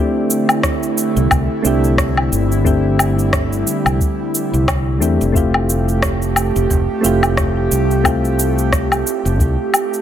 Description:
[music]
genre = sunset chillout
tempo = 89 BPM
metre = 4/4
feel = swing 57% on 16ths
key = unclear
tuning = A4 = 440 Hz
[part]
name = soft electric-piano-like synth keys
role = accompaniment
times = 0.0-10.0 s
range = A3 to G4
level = -20 LUFS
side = moving between left 4 dB and right 7 dB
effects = chorus, auto-pan, ping-pong delay
[part]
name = airy breathy pad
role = sustained chords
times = 0.0-10.0 s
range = D3 to G4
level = -21 LUFS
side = right 1 dB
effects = chorus
[part]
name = electronic cabasa, woodblock and rim click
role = drums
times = 0.3-10.0 s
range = none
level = -20 LUFS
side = left 1 dB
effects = none
[part]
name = electronic kick drum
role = drums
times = 0.6-9.6 s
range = none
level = -19 LUFS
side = equal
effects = none
[part]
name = fingered electric bass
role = bass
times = 1.2-9.6 s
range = F1 to E2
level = -18 LUFS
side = equal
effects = none
[sound]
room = light reverb, digital ambience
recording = none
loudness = -14 LUFS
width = side -10 dB against mid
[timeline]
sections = 0.0-10.0 A section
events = none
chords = 0.0 Fmaj9

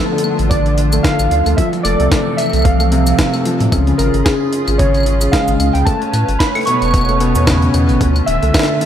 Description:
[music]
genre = IDM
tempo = 112 BPM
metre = 4/4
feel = swing 56% on 16ths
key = unclear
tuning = A4 = 440 Hz
[part]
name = warbly lo-fi synth keys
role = melody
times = 0.0-8.9 s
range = G#4 to C#6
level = -19 LUFS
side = right 1 dB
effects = chorus, analog delay
[part]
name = hollow soft pad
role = sustained chords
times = 0.0-8.9 s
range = C#3 to C#5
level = -20 LUFS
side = equal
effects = ensemble chorus
[part]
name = felt-muted upright piano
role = arpeggios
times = 0.0-8.9 s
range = B2 to C#4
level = -19 LUFS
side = left 1 dB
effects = diffuse ambient delay
[part]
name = jungle sampler-style drum kit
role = drums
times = 0.2-8.9 s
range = cabasa, claves, hi-hat, snare drum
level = -21 LUFS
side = equal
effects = overdrive
[part]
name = warm sub bass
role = bass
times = 0.4-8.5 s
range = D1 to A2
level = -16 LUFS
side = equal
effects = tube saturation
[part]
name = electronic kick drum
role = drums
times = 0.5-8.7 s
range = none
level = -16 LUFS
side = equal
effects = overdrive
[sound]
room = moderate plate reverb, RT60 2.2 s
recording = dreamy mix soaked in reverb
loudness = -12 LUFS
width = side -10 dB against mid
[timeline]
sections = 0.0-8.9 A section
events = none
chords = 0.0 Dm; 1.6 Fmaj7; 3.7 C#; 5.9 Aadd9; 8.0 Dmadd9

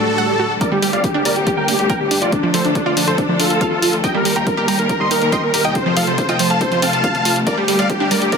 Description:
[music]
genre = uplifting trance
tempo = 140 BPM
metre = 4/4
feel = straight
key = G minor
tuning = A4 = 440 Hz
[part]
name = dense compressed supersaw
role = melody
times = 0.0-8.4 s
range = D4 to C6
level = -18 LUFS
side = equal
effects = sidechain pumping, low-pass filter, ping-pong delay
[part]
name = clear symphonic string section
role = sustained chords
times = 0.0-8.4 s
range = A2 to Bb4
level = -22 LUFS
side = left 2 dB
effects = sidechain pumping
[part]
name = swell and riser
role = sound effects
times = 0.0-0.6, 7.5-8.4 s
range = none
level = -26 LUFS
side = right 2 dB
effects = none
[part]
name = wide unison pluck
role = arpeggios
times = 0.2-8.2 s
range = F3 to G5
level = -22 LUFS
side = right 4 dB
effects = sidechain pumping, ping-pong delay
[part]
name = warm grand piano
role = second line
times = 0.6-8.4 s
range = D4 to C6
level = -24 LUFS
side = left 1 dB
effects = sidechain pumping, low-pass filter, ping-pong delay
[part]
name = electronic hi-hat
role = drums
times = 0.6-8.4 s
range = none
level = -22 LUFS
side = left 1 dB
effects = none
[part]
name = electronic kick drum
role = drums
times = 0.6-8.4 s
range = none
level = -22 LUFS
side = left 1 dB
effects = high-pass filter on kick, high-pass filter on room
[part]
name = gritty driven synth bass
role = bass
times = 0.7-8.3 s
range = D1 to G2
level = -29 LUFS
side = left 1 dB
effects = none
[sound]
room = light reverb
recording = dense, heavily limited modern master, high-pass filter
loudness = -14 LUFS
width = side -5 dB against mid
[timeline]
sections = 0.6-8.4 A section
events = swell 0.0-0.6; build-up 0.6-8.4; filter sweep on supersaw synth 0.6-8.4; drum fill 7.5-8.4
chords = 0.0 D; 0.6 Gmadd9; 2.3 Dm; 4.0 Eb; 5.8 F; 7.5 Gmadd9

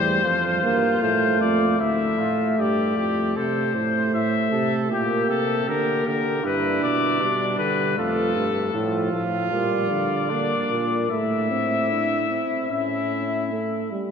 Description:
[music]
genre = classical, imitative canzona for brass ensemble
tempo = 77 BPM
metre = 4/4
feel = straight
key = unclear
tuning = A4 = 440 Hz
[part]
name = clear trumpet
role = melody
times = 0.0-13.9 s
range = G4 to E5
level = -25 LUFS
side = left 6 dB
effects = none
[part]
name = warm trumpet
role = second line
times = 0.0-13.9 s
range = D4 to C5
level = -28 LUFS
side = right 4 dB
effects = none
[part]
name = dark euphonium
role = accompaniment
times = 0.0-14.1 s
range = F3 to D4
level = -25 LUFS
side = right 2 dB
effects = none
[part]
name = mellow bass trombone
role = bass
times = 0.0-13.9 s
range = D2 to D3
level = -28 LUFS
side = right 1 dB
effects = none
[sound]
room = wet cathedral reverb, RT60 4.8 s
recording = nothing above 7.6 kHz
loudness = -20 LUFS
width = side -6 dB against mid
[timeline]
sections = 0.0-1.8 A section; 1.8-14.1 B section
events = none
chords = 0.2 F; 1.8 Dm; 3.4 Am; 4.9 Gm/Bb; 6.4 G; 8.0 Fadd9; 9.5 Gm/Bb; 11.1 Asus4; 12.7 A

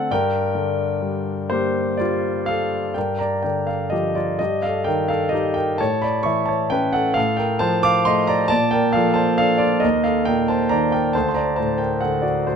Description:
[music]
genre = classical, lyrical solo piano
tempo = 41-46 BPM (dotted quarters)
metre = 6/8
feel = rubato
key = G minor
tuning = A4 = 438 Hz
[part]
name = warm concert grand piano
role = solo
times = 0.0-12.6 s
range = D2 to D6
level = -18 LUFS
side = equal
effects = none
[sound]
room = light reverb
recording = close, detailed microphones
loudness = -18 LUFS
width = side -6 dB against mid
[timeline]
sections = 0.0-3.0 A section; 3.0-12.6 B section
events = none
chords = 0.1 Gmadd9; 4.4 Ebadd9/G; 5.8 A; 7.2 Dm/A; 8.5 Bbmaj7; 9.8 Eb5; 11.2 D7

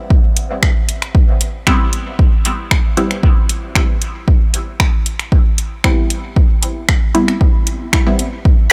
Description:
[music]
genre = dub techno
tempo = 115 BPM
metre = 4/4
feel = straight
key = unclear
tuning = A4 = 440 Hz
[part]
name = electronic kick drum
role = drums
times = 0.1-8.6 s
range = none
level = -15 LUFS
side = equal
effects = overdrive, small room ambience
[part]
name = deep house drum kit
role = drums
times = 0.4-8.3 s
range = finger snaps, hi-hat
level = -20 LUFS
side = equal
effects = overdrive, small room ambience
[part]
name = filtered dub chord stab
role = stabs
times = 1.7-8.3 s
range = G3 to E4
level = -23 LUFS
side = equal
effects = phaser, sidechain pumping, dub echo
[part]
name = deep dark ambient pad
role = sustained chords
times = 8.5-8.7 s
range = none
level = barely audible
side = none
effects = none
[sound]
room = little or no reverb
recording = none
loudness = -15 LUFS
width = mono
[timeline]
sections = 0.0-8.5 A section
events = none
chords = 0.0 Gadd11

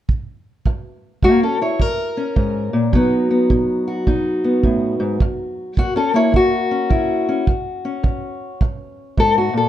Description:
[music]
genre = acoustic country blues, solo or duo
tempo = 106 BPM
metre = 4/4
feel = swing 64% on 8ths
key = F# mixolydian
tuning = A4 = 441 Hz
[part]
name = kick drum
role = drums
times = 0.1-9.3 s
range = none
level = -19 LUFS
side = right 2 dB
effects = none
[part]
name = fingerpicked steel-string acoustic guitar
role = melody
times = 0.7-9.7 s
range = F#2 to C#5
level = -17 LUFS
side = left 1 dB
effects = plate reverb
[sound]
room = light reverb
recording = dark, warm production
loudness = -16 LUFS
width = side -12 dB against mid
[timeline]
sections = 0.7-9.7 A section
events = none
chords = 0.0 N.C.; 0.7 F#; 2.9 B; 5.2 F#

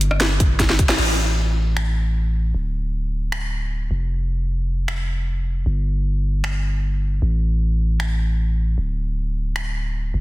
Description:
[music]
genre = future bass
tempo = 154 BPM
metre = 4/4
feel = half-time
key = unclear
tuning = A4 = 439 Hz
[part]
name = long sustained 808-style bass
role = bass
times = 0.0-10.2 s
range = D1 to A1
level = -20 LUFS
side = equal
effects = sidechain pumping
[part]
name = trap drum kit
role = drums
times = 0.0-9.6 s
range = crash cymbal, finger snaps, hi-hat, rim click, snare drum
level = -23 LUFS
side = equal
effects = overdrive
[part]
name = electronic kick drum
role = drums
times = 0.4-0.9 s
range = none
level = -19 LUFS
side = equal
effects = none
[sound]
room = light reverb, digital ambience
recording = dense, heavily limited modern master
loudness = -19 LUFS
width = side -18 dB against mid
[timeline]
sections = 1.0-10.2 A section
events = drum fill 0.6-1.0; band accent 0.9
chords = none

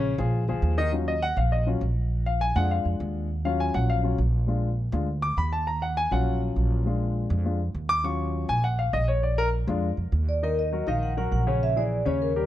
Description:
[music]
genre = jazz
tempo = 202 BPM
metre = 4/4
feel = straight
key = Eb harmonic minor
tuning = A4 = 439 Hz
[part]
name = warm grand piano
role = accompaniment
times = 0.0-12.5 s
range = C#3 to D6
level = -27 LUFS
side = left 3 dB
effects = none
[part]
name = upright bass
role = bass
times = 0.0-12.5 s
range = A#1 to F2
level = -26 LUFS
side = right 1 dB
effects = none
[part]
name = vibraphone with soft mallets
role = melody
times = 10.3-12.5 s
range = Bb4 to Gb5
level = -28 LUFS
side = right 1 dB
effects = none
[sound]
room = small room reverb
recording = dry, close 1970s-style studio recording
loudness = -23 LUFS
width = side -13 dB against mid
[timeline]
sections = 0.9-10.4 A section; 10.4-12.5 B section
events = grand piano solo 0.9-10.4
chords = 0.3 A#7; 0.9 Ebm9; 2.1 Bb7; 3.3 Ebm9; 4.5 Bb7; 5.7 Ebm9; 6.9 Bb7; 8.0 Ebm9; 9.2 Bb7; 10.4 Ebm7; 11.6 Bbm7b5

